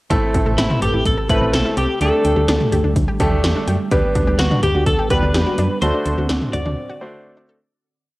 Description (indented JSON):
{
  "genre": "synth-pop",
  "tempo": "126 BPM",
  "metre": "4/4",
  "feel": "straight",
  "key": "unclear",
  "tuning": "A4 = 440 Hz",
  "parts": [
    { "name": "bright concert grand piano", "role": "accompaniment", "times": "0.1-7.6 s", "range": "A3 to C5", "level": "-22 LUFS", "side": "right 1 dB", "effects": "cassette tape" },
    { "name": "phased analog pad", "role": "sustained chords", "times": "0.1-7.7 s", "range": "C3 to B4", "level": "-27 LUFS", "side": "right 1 dB", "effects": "phaser, chorus, cassette tape" },
    { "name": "analog pluck", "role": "arpeggios", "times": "0.1-7.6 s", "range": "C4 to G5", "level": "-27 LUFS", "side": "left 1 dB", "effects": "chorus, cassette tape, analog delay" },
    { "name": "solid FM bass", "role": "bass", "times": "0.1-6.8 s", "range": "A1 to F#2", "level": "-20 LUFS", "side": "equal", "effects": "none" },
    { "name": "80s electronic pad drums", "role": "drums", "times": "0.1-6.8 s", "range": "hi-hat, kick drum, snare drum, toms", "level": "-21 LUFS", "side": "equal", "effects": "gated reverb on snare and toms, cassette tape" },
    { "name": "twelve-string electric guitar", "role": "melody", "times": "0.6-7.4 s", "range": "E4 to D5", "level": "-21 LUFS", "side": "equal", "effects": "cassette tape" }
  ],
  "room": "light reverb, digital ambience",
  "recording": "home recording on cassette",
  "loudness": "-15 LUFS",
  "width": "side -20 dB against mid",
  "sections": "0.1-7.7 pre-chorus",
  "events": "fade-out 5.8-7.7; break 6.8-7.7",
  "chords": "0.1 Amadd9; 2.0 Dsus4; 3.9 Gmaj7/D; 5.8 D7",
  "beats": "| 0.10 0.58 1.06 1.53 | 2.01 2.49 2.96 3.44 | 3.91 4.39 4.87 5.34 | 5.82 6.29 6.77 7.25"
}